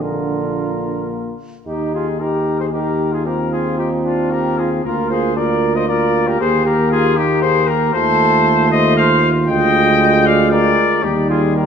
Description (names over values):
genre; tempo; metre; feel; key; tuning
classical, brass quintet; 115 BPM; 3/4; rubato; Eb major; A4 = 440 Hz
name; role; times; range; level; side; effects
warm trumpet; melody; 0.0-11.7 s; F4 to G5; -19 LUFS; left 8 dB; none
warm flugelhorn; second line; 0.0-11.7 s; D4 to Eb5; -21 LUFS; right 6 dB; none
clear trombone; accompaniment; 0.0-11.7 s; D3 to Eb4; -21 LUFS; right 2 dB; none
mellow French horn; accompaniment; 0.0-11.7 s; Bb3 to G4; -21 LUFS; left 2 dB; none
mellow tuba; bass; 0.0-11.7 s; Bb1 to Eb2; -20 LUFS; right 2 dB; none
room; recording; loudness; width
wet concert hall reverb, RT60 1.9 s; none; -13 LUFS; side -7 dB against mid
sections
0.0-1.7 A section; 1.7-11.7 B section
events
none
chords
0.0 Bb; 1.7 Eb; 3.3 F5/Eb; 4.8 Bb/D; 6.4 Eb; 7.9 F7/Eb; 9.5 Bb7/D; 11.0 Eb